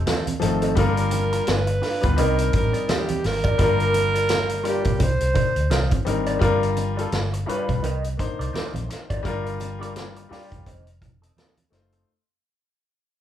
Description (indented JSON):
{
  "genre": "lush 1970s-style soul",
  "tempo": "85 BPM",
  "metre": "4/4",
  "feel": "swing 58% on 16ths",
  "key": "C dorian",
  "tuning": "A4 = 439 Hz",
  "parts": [
    { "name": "breathy alto saxophone", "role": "melody", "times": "0.0-6.1 s", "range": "G4 to C5", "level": "-25 LUFS", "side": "right 2 dB", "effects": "none" },
    { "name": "electric guitar through a small old amp", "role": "riff", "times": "0.0-12.0 s", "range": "C4 to Eb5", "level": "-32 LUFS", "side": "right 1 dB", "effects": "wah" },
    { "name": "vintage muted fingered electric bass", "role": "bass", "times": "0.0-12.0 s", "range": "F1 to D2", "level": "-25 LUFS", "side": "equal", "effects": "none" },
    { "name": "vintage drum kit", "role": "drums", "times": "0.1-12.1 s", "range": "hi-hat, kick drum, snare drum", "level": "-26 LUFS", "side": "equal", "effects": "none" },
    { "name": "congas", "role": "percussion", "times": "0.1-11.7 s", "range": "none", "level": "-31 LUFS", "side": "right 3 dB", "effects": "none" },
    { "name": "warm concert grand piano", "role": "accompaniment", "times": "0.4-12.1 s", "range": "F3 to C5", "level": "-26 LUFS", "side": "left 4 dB", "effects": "none" }
  ],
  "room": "moderate large studio reverb, RT60 0.8 s",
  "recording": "band playing live in one room",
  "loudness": "-20 LUFS",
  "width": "side -11 dB against mid",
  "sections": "0.0-6.4 A section; 6.4-12.1 B section",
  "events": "fade-out 6.4-12.1",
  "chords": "0.0 F7; 0.8 Gm7; 1.5 G7; 2.2 Cm9; 3.6 Gm7; 5.0 Cm9; 6.4 Gm7; 7.1 G7; 7.8 Cm9; 9.2 Gm7; 10.7 F7"
}